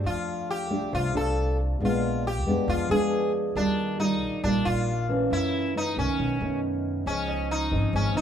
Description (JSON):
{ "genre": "bossa nova", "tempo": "137 BPM", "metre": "4/4", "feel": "straight", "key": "unclear", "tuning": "A4 = 440 Hz", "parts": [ { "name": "nylon-string guitar", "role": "accompaniment", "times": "0.0-8.2 s", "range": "F#2 to G4", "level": "-27 LUFS", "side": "equal", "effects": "none" }, { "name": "upright bass", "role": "bass", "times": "0.0-8.2 s", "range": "Ab1 to F#2", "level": "-30 LUFS", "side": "equal", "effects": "none" }, { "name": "sitar", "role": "melody", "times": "0.1-8.2 s", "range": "C#4 to A4", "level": "-29 LUFS", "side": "equal", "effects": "none" }, { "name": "warm concert grand piano", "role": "accompaniment", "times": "7.3-8.2 s", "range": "Eb5", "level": "-38 LUFS", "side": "right 6 dB", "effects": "none" } ], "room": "moderate large studio reverb, RT60 1.2 s", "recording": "band playing live in one room", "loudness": "-24 LUFS", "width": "side -9 dB against mid", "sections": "0.0-8.2 A section", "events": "none", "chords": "0.1 F69; 1.8 Bb7b9; 3.6 Ebmaj9; 5.3 F#m7; 6.2 B9; 7.1 Dbmaj9" }